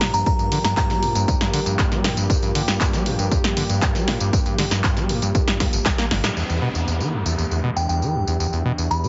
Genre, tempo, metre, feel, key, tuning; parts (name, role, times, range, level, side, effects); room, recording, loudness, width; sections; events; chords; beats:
acid house; 118 BPM; 4/4; straight; A4 = 440 Hz
warm analog pad; sustained chords; 0.0-9.1 s; E2 to G4; -30 LUFS; equal; chorus, sidechain pumping
overdriven acid bass; riff; 0.0-9.1 s; G1 to Bb3; -26 LUFS; equal; sidechain pumping, tape echo
punchy analog drum machine; drums; 0.0-9.1 s; handclaps, hi-hat, snare drum, tambourine; -27 LUFS; equal; small room reverb
glassy synth bell; melody; 0.1-0.9, 7.8-9.1 s; G5 to B5; -27 LUFS; equal; chorus, tape echo
electronic kick drum; drums; 0.3-6.0 s; -25 LUFS; equal; small room reverb
downlifter; sound effects; 6.4-9.1 s; -33 LUFS; equal
moderate spring reverb, RT60 1.6 s; heavily compressed radio sound, multiband compression, nothing above 7.8 kHz; -21 LUFS; mono
0.0-6.4 A section; 6.4-9.1 B section
drum fill 5.6-6.4; band accent 6.2
0.0 Gm7; 6.4 Em7
| 0.26 0.77 1.28 1.79 | 2.30 2.81 3.31 3.82 | 4.33 4.84 5.35 5.86 | 6.37 6.87 7.38 7.89 | 8.40 8.91